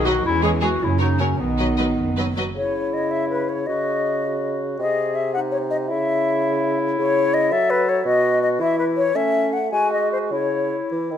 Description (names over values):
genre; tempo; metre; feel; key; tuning
quick classical-period movement for symphony orchestra; 100-114 BPM (dotted quarters); 6/8; rubato; C# minor; A4 = 440 Hz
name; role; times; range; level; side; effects
mellow clarinet; second line; 0.0-11.2 s; B3 to A4; -25 LUFS; left 3 dB; none
mellow French horn section; sustained chords; 0.0-2.4 s; F#3 to D#4; -28 LUFS; left 3 dB; none
clear studio double bass section; bass; 0.0-2.5 s; F#1 to F#2; -24 LUFS; right 3 dB; none
dark studio cello section; bass; 0.0-2.3 s; C#3 to E3; -29 LUFS; right 4 dB; none
rich studio violin section; melody; 0.1-2.4 s; C#5 to D#5; -32 LUFS; left 2 dB; none
clear studio violin section; second line; 0.1-2.4 s; G#4 to B4; -30 LUFS; left 1 dB; none
rich studio viola section; accompaniment; 0.1-2.4 s; F#3 to G#3; -28 LUFS; right 2 dB; none
mellow silver concert flute; second line; 2.5-10.9 s; B4 to G#5; -21 LUFS; left 3 dB; none
mellow bassoon; accompaniment; 2.6-11.2 s; B2 to A3; -24 LUFS; right 3 dB; none
room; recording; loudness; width
light reverb; close, detailed microphones; -18 LUFS; side -9 dB against mid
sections
0.0-2.6 A section; 2.6-11.2 B section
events
none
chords
0.2 C#m/E; 0.8 F#; 1.4 B; 2.6 C#m; 4.8 G#/B#; 5.9 C#m; 7.5 F#m; 8.1 B; 8.6 N.C.; 9.2 A; 9.7 G#7(no3); 10.3 C#m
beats
| 0.24 0.81 | 1.40 1.99 | 2.57 3.13 | 3.69 4.24 | 4.79 5.34 | 5.89 6.44 | 6.99 7.52 | 8.06 8.60 | 9.15 9.72 | 10.32 10.91